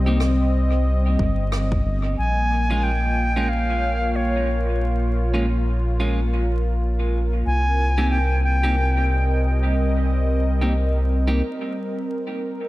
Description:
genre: ambient dub.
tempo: 91 BPM.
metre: 4/4.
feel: swing 59% on 16ths.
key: Bb dorian.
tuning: A4 = 440 Hz.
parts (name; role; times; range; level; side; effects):
warm analog pad; sustained chords; 0.0-12.7 s; G3 to Eb5; -26 LUFS; equal; chorus.
round analog bass; bass; 0.0-11.4 s; G1 to C2; -20 LUFS; equal; none.
clean electric guitar; stabs; 0.1-11.4 s; Ab3 to G4; -30 LUFS; right 1 dB; dub echo.
rim click; drums; 0.2-1.7 s; none; -34 LUFS; equal; low-pass filter on snare, low-pass filter on room, dub echo.
electronic kick drum; drums; 1.2-1.8 s; none; -24 LUFS; equal; none.
bright reedy silver concert flute; melody; 2.2-9.4 s; Db5 to Ab5; -26 LUFS; equal; vintage 12-bit sampler grit, dub echo.
room: light reverb, small room ambience.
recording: vinyl crackle.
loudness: -19 LUFS.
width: side -17 dB against mid.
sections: 0.0-2.2 A section; 2.2-12.7 B section.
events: break 11.4-12.7.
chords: 0.0 Cm; 2.2 Bbm; 7.5 Cm7.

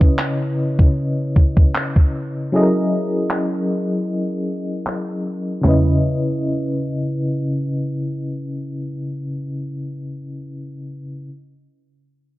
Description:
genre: contemporary R&B.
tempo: 77 BPM.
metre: 4/4.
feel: swing 54% on 16ths.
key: C# dorian.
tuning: A4 = 440 Hz.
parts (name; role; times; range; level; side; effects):
FM electric piano with tremolo; accompaniment; 0.0-11.3 s; C#3 to D#5; -20 LUFS; equal; none.
clean 12-bit digital drum machine; drums; 0.0-5.8 s; handclaps, kick drum, snare drum, toms; -15 LUFS; equal; vintage 12-bit sampler grit.
room: light reverb.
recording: dark, warm production, low-pass filter.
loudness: -18 LUFS.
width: side -17 dB against mid.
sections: 0.0-5.6 A section; 5.6-8.8 B section.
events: filter sweep 0.0-5.6.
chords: 0.0 C#m7; 2.5 F#13; 5.6 C#m7.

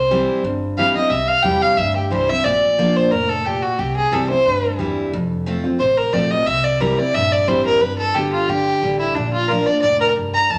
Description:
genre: bluegrass.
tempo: 179 BPM.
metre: 4/4.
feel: swing 53% on 8ths.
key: C mixolydian.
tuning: A4 = 440 Hz.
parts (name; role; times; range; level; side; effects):
rich fiddle; melody; 0.0-10.6 s; D4 to Bb5; -19 LUFS; equal; none.
picked steel-string acoustic guitar; accompaniment; 0.0-10.6 s; F2 to G4; -24 LUFS; equal; none.
upright bass; bass; 0.0-10.6 s; F1 to E2; -31 LUFS; equal; none.
room: wet large studio reverb, RT60 1.1 s.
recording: none.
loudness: -18 LUFS.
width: mono.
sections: 0.0-5.1 A section; 5.1-10.6 B section.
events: fiddle solo 5.1-10.6.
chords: 0.0 C; 2.4 Bb; 3.8 C; 5.1 F; 6.5 C; 7.8 G; 9.2 Bb.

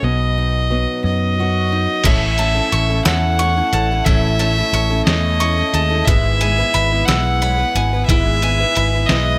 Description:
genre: indie folk with a building arrangement.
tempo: 60 BPM (dotted quarters).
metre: 6/8.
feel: straight.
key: unclear.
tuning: A4 = 440 Hz.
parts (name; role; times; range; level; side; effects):
warm fiddle; melody; 0.0-9.4 s; D#5 to F#5; -22 LUFS; equal; slapback echo.
fingerpicked acoustic archtop guitar; accompaniment; 0.0-2.1 s; F#2 to F#4; -25 LUFS; equal; none.
picked electric bass; bass; 0.0-9.4 s; G#1 to F#2; -21 LUFS; equal; none.
picked twelve-string acoustic guitar; accompaniment; 2.0-9.4 s; A2 to B4; -27 LUFS; equal; none.
lo-fi sampler-style drum kit; drums; 2.0-9.3 s; crash cymbal, hi-hat, kick drum, snare drum; -21 LUFS; equal; none.
warm baby grand piano; accompaniment; 2.1-9.4 s; G#1 to C#5; -30 LUFS; equal; none.
bowl-back mandolin; arpeggios; 2.1-9.4 s; E4 to E6; -27 LUFS; equal; none.
room: light reverb, small room ambience.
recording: none.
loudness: -16 LUFS.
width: mono.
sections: 0.0-2.1 A section; 2.1-9.4 B section.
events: none.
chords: 0.0 B; 2.1 A; 6.1 E/G#.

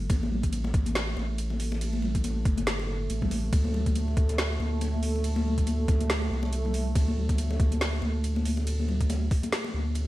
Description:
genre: deep dubstep.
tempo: 140 BPM.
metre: 4/4.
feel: swing 57% on 16ths, half-time.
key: unclear.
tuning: A4 = 440 Hz.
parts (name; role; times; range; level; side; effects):
dark analog pad; sustained chords; 0.0-10.1 s; A3; -35 LUFS; right 2 dB; chorus, phaser.
saturated sub bass; bass; 0.0-10.1 s; G1 to D2; -28 LUFS; equal; none.
electronic kick drum; drums; 0.1-9.4 s; none; -26 LUFS; equal; none.
garage drum kit; drums; 0.1-10.1 s; hi-hat, ride cymbal, snare drum; -34 LUFS; equal; overdrive, gated reverb.
congas; percussion; 0.1-10.0 s; none; -34 LUFS; left 3 dB; dub echo.
room: little or no reverb.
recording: bright 1980s-style digital production, vinyl crackle.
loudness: -25 LUFS.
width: side -16 dB against mid.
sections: 0.0-10.1 A section.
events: none.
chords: 0.0 Gsus2; 3.5 D5.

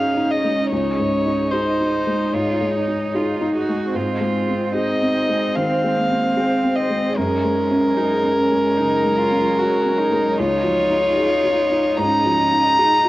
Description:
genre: neoclassical piano and strings.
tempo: 75 BPM.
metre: 4/4.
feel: rubato.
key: Db major.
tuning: A4 = 440 Hz.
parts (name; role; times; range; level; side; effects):
warm violin; melody; 0.0-13.1 s; Bb4 to Bb5; -19 LUFS; left 1 dB; cassette tape.
warm cello; second line; 0.0-13.1 s; Bb3 to Gb4; -24 LUFS; right 3 dB; cassette tape.
felt-muted upright piano; accompaniment; 0.0-13.1 s; Db2 to Ab4; -23 LUFS; left 1 dB; cassette tape.
warm viola; accompaniment; 0.0-13.1 s; Ab3 to Eb4; -26 LUFS; right 2 dB; cassette tape.
ethereal airy pad; sustained chords; 0.0-13.1 s; Gb3 to F5; -32 LUFS; right 1 dB; none.
room: light reverb, small room ambience.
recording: home recording on cassette.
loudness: -17 LUFS.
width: side -16 dB against mid.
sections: 0.0-13.1 A section.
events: none.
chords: 0.0 Dbadd9; 4.0 Ab; 7.2 Gbadd9; 10.4 Dbadd9.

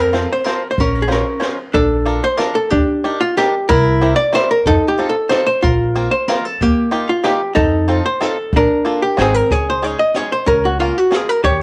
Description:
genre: musette waltz.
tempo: 186 BPM.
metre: 3/4.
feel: straight.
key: Bb major.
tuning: A4 = 442 Hz.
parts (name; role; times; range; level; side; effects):
archtop guitar, miked and amplified; melody; 0.0-11.6 s; Bb3 to Eb5; -17 LUFS; equal; cassette tape.
upright bass; bass; 0.0-11.6 s; Ab1 to F2; -22 LUFS; equal; none.
bluegrass banjo; accompaniment; 0.1-11.3 s; Ab3 to C5; -24 LUFS; equal; cassette tape.
jazz brush drum kit; drums; 0.1-11.5 s; hi-hat, kick drum, ride cymbal, snare drum; -25 LUFS; equal; cassette tape.
room: light reverb, small room ambience.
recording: home recording on cassette.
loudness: -16 LUFS.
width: mono.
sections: 0.0-1.8 A section; 1.8-9.5 B section; 9.5-11.6 C section.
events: none.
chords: 0.0 F; 0.8 Bbmadd9; 1.8 Bbmaj7; 2.7 Ebmaj7; 3.7 C7; 4.7 F7; 5.6 Bbsus2; 6.6 Ebadd9; 7.6 F7; 8.5 Bbmaj7; 9.2 Ab7; 9.5 Dbsus2; 10.5 Bbm/Db.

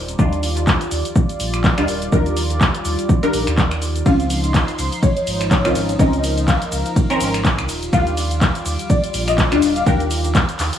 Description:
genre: deep house.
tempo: 124 BPM.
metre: 4/4.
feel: swing 57% on 16ths.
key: unclear.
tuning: A4 = 440 Hz.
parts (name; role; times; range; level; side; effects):
warm analog pad; sustained chords; 0.0-10.8 s; F3 to D6; -26 LUFS; equal; chorus, sidechain pumping.
sub bass with octave; bass; 0.0-10.7 s; Eb1 to Eb2; -23 LUFS; equal; tube saturation, sidechain pumping.
deep house drum kit; drums; 0.1-10.8 s; finger snaps, handclaps, hi-hat, ride cymbal, shaker; -23 LUFS; equal; none.
filtered dub chord stab; stabs; 0.2-10.8 s; Eb3 to Bb4; -21 LUFS; left 1 dB; phaser, ensemble chorus, sidechain pumping, analog delay.
electronic kick drum; drums; 0.2-10.5 s; none; -17 LUFS; equal; none.
soft round pluck; melody; 4.1-10.8 s; Db5 to G5; -25 LUFS; left 2 dB; ensemble chorus, analog delay.
room: light reverb, digital ambience.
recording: vinyl crackle.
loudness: -15 LUFS.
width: side -10 dB against mid.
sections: 0.0-10.8 A section.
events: none.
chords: 0.0 Ebmaj9; 4.1 Dbmaj9; 7.7 Ebmaj9.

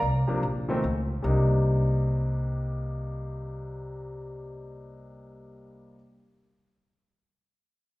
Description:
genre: modal jazz.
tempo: 147 BPM.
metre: 4/4.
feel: swing 65% on 8ths.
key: C minor.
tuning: A4 = 440 Hz.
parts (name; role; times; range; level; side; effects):
upright bass; bass; 0.0-5.9 s; Bb1 to Db2; -28 LUFS; equal; none.
clear grand piano; accompaniment; 0.3-6.0 s; Bb2 to Eb4; -30 LUFS; left 1 dB; none.
room: wet recital hall reverb, RT60 1.7 s.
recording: recorded in a church or concert hall.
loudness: -25 LUFS.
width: side -18 dB against mid.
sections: 0.0-1.2 A section; 1.2-4.5 B section.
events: none.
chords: 0.0 N.C.; 1.2 Cm7.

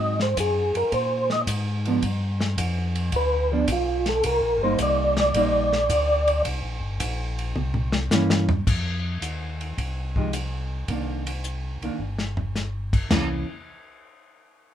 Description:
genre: soul jazz organ trio.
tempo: 108 BPM.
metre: 4/4.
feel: swing 69% on 8ths.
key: C minor from 8.7 s.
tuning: A4 = 441 Hz.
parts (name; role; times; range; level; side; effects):
percussive tonewheel organ; melody; 0.0-6.4 s; D4 to Eb5; -22 LUFS; right 1 dB; slow rotary speaker, chorus vibrato.
hollow-body jazz guitar; accompaniment; 0.0-13.4 s; Eb3 to G4; -26 LUFS; right 2 dB; none.
mellow tonewheel organ; bass; 0.0-13.4 s; G1 to Bb2; -27 LUFS; left 1 dB; overdrive, chorus vibrato, slow rotary speaker.
warm soul drum kit; drums; 0.2-13.3 s; crash cymbal, hi-hat, kick drum, ride cymbal, snare drum, toms; -28 LUFS; left 1 dB; none.
room: moderate club reverb, RT60 0.7 s.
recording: minimal, uncompressed stereo recording.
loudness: -22 LUFS.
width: side -10 dB against mid.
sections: 0.0-8.7 A section; 8.7-13.1 B section; 13.1-14.7 C section.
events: tonewheel organ solo 0.0-8.7; drum fill 7.6-8.7, 12.0-12.5.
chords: 0.0 Ab7; 2.0 G7; 4.2 Cm7; 7.6 C7b9; 8.7 F7(no3); 10.9 Cm9; 13.1 C7b9.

